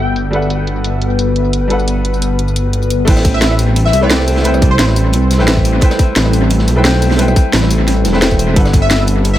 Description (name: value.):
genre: liquid drum and bass.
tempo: 175 BPM.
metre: 4/4.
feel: straight.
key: A dorian.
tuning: A4 = 439 Hz.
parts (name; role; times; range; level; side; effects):
plucky unison lead; melody; 0.0-0.3, 3.3-4.8, 8.8-9.4 s; C5 to G5; -22 LUFS; left 2 dB; wide subtle chorus, dub echo.
bright grand piano; accompaniment; 0.0-9.4 s; G3 to G5; -19 LUFS; right 1 dB; dub echo.
glassy FM pad; sustained chords; 0.0-9.4 s; G3 to B4; -20 LUFS; left 2 dB; ensemble chorus, built-in reverb, sidechain pumping.
dark detuned saw bass; bass; 0.0-9.4 s; E1 to C2; -14 LUFS; equal; none.
garage drum kit; drums; 0.2-9.3 s; crash cymbal, hi-hat, rim click, snare drum, tambourine; -18 LUFS; equal; overdrive, analog delay.
crunchy breakbeat drum kit; drums; 3.1-9.4 s; hi-hat, snare drum; -24 LUFS; equal; high-pass filter on hats, high-pass filter on snare, high-pass filter on room, analog delay.
electronic kick drum; drums; 3.1-8.8 s; none; -12 LUFS; equal; overdrive.
room: light reverb, small room ambience.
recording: echo-heavy mix, low-pass filter.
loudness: -10 LUFS.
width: side -13 dB against mid.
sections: 0.0-3.1 A section; 3.1-9.4 B section.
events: filter sweep on ambient pad 0.0-3.1; drop 3.1-9.4.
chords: 0.0 Gmaj9; 3.1 Am7; 8.6 Gmaj9.